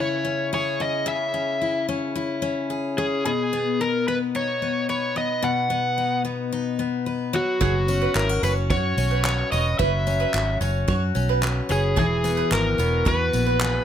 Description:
acoustic pop; 110 BPM; 4/4; straight; B major; A4 = 440 Hz
overdriven slide guitar; melody; 0.0-13.8 s; F#4 to F#5; -24 LUFS; equal; plate reverb
picked steel-string acoustic guitar; accompaniment; 0.0-13.8 s; B2 to B4; -26 LUFS; left 4 dB
bowl-back mandolin; arpeggios; 7.6-13.6 s; G#4 to C#5; -29 LUFS; right 7 dB
vintage muted fingered electric bass; bass; 7.6-13.8 s; E1 to F#2; -24 LUFS; right 1 dB
soft brush drum kit; drums; 7.6-13.7 s; handclaps, kick drum, tambourine; -28 LUFS; right 1 dB
light reverb; -21 LUFS; side -9 dB against mid
0.0-13.8 A section
0.0 C#m; 3.2 B; 7.3 F#sus4; 12.0 Eadd9
0.52 | 1.07 1.61 2.16 2.70 | 3.25 3.79 4.34 4.88 | 5.43 5.97 6.52 7.07 | 7.61 8.16 8.70 9.25 | 9.79 10.34 10.88 11.43 | 11.97 12.52 13.07 13.61

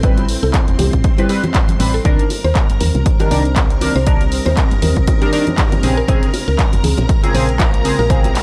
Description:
deep house; 119 BPM; 4/4; swing 56% on 16ths; A4 = 443 Hz
deep dark ambient pad; sustained chords; 0.1-8.4 s; G3 to C5; -32 LUFS; equal
mallet-like synth pluck; arpeggios; 0.0-8.2 s; E4 to D5; -27 LUFS; equal; chorus, sidechain pumping, tape echo
chorused polysynth; stabs; 0.0-8.3 s; Db3 to B4; -23 LUFS; equal; phaser, sidechain pumping, tape echo
woody FM bass; bass; 0.0-8.4 s; E1 to Eb2; -20 LUFS; equal; sidechain pumping
deep house drum kit; drums; 0.0-8.4 s; handclaps, hi-hat; -26 LUFS; equal
electronic kick drum; drums; 0.0-8.2 s; -17 LUFS; equal
deep dark ambient pad; texture; 0.0-8.4 s; C4 to Eb6; -29 LUFS; equal; chorus, built-in reverb, sidechain pumping
string machine, violins; texture; 0.0-8.4 s; C4 to C6; -30 LUFS; equal; ensemble chorus, sidechain pumping
bongos and congas; percussion; 0.2-8.3 s; -28 LUFS; equal
little or no reverb; dry, gritty hardware recording, cassette tape; -15 LUFS; mono
0.0-8.4 A section
0.0 Am9; 2.1 Cm9; 5.8 Bbm9
| 0.03 0.54 1.04 1.55 | 2.05 2.56 3.06 3.56 | 4.07 4.57 5.08 5.58 | 6.08 6.59 7.09 7.60 | 8.10

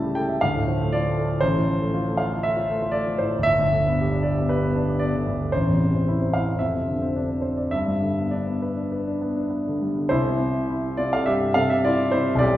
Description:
classical, romantic character piece for solo piano; 98-125 BPM; 4/4; rubato; C major; A4 = 442 Hz
warm concert grand piano; solo; 0.0-12.6 s; G1 to A5; -20 LUFS; equal
wet recital hall reverb, RT60 1.8 s; heard from further back in the room; -20 LUFS; side -13 dB against mid
0.0-10.1 A section; 10.1-12.6 B section
0.4 Dm; 1.4 F/A; 3.4 G; 5.5 Am; 6.6 Dm7/F; 7.7 G; 10.1 C
0.42 0.91 | 1.41 1.92 2.42 2.92 | 3.44 3.97 4.49 5.00 | 5.52 6.05 6.58 7.12 | 7.71 8.32 8.91 9.52 | 10.11 10.69 11.28 11.85 | 12.42

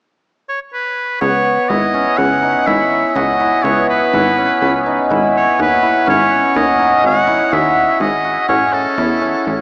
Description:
contemporary instrumental, chamber music in an uneven meter; 124 BPM; 5/4; straight; C# minor; A4 = 438 Hz
clear oboe; melody; 0.5-9.6 s; A4 to F#5; -16 LUFS; equal
hammered dulcimer; arpeggios; 1.2-9.6 s; B3 to G#4; -14 LUFS; equal
plucky analog bass; bass; 1.2-9.6 s; G#1 to E2; -20 LUFS; equal
wet huge ambient reverb, RT60 7.7 s; in a vast, echoing space, small speaker sound; -12 LUFS; side -28 dB against mid
0.0-1.2 A section; 1.2-9.6 B section
0.0 N.C.; 1.2 C#m7; 8.5 A
0.24 0.73 | 1.22 1.70 2.19 2.67 3.16 | 3.64 4.13 4.61 5.10 5.58 | 6.07 6.56 7.04 7.53 8.01 | 8.50 8.99 9.47

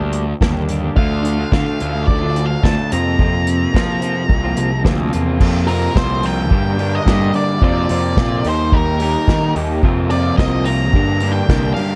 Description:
indie rock; 108 BPM; 4/4; straight; A4 = 440 Hz
twelve-string electric guitar; riff; 0.0-12.0 s; F2 to G4; -23 LUFS; equal
fuzz picked electric bass; bass; 0.0-11.7 s; C2 to F3; -22 LUFS; equal; overdrive
unplugged drum kit; drums; 0.1-11.9 s; crash cymbal, hi-hat, kick drum, snare drum; -20 LUFS; equal
octave-fuzz lead guitar; melody; 1.0-12.0 s; Bb4 to Bb5; -25 LUFS; equal; distortion
raw garage guitar; riff; 1.0-12.0 s; F2 to Bb4; -27 LUFS; equal; overdrive, analog chorus
little or no reverb; cassette tape; -16 LUFS; mono
0.0-5.4 A section; 5.4-12.0 B section
0.0 Gm; 1.0 Dm; 2.9 Fsus4; 6.5 Gm; 7.6 Fsus4; 8.5 Eb; 9.8 Fsus4; 10.9 Gm
0.41 | 0.97 1.52 2.08 2.63 | 3.19 3.74 4.30 4.85 | 5.41 5.96 6.51 7.07 | 7.62 8.17 8.73 9.28 | 9.84 10.39 10.94 11.50

